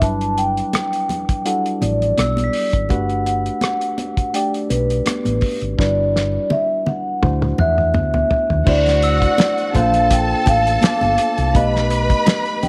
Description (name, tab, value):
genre	lush 1970s-style soul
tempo	83 BPM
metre	4/4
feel	swing 54% on 16ths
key	unclear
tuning	A4 = 437 Hz
part	vibraphone with soft mallets	melody	0.0-12.7 s	B4 to A5	-22 LUFS	equal	none
part	tine electric piano	accompaniment	0.0-12.7 s	F#3 to D5	-27 LUFS	equal	none
part	hollow-body short-scale fingered electric bass	bass	0.0-12.1 s	G1 to E2	-23 LUFS	equal	none
part	cloth-damped thuddy drum kit	drums	0.0-12.7 s	crash cymbal, hi-hat, kick drum, rim click, snare drum, toms	-23 LUFS	equal	none
part	glockenspiel with soft plastic mallets	texture	0.0-11.9 s	D6 to B6	-34 LUFS	equal	none
part	congas	percussion	0.7-12.7 s	none	-29 LUFS	equal	none
part	warm studio violin section	second line	8.7-12.7 s	F#4 to B5	-25 LUFS	equal	tape echo
room	light reverb, small room ambience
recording	none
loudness	-18 LUFS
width	mono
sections	0.0-8.7 A section; 8.7-12.7 B section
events	drum fill 5.8-8.7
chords	0.0 Em7/G; 7.2 D7; 9.7 Bbmaj9; 11.5 B7alt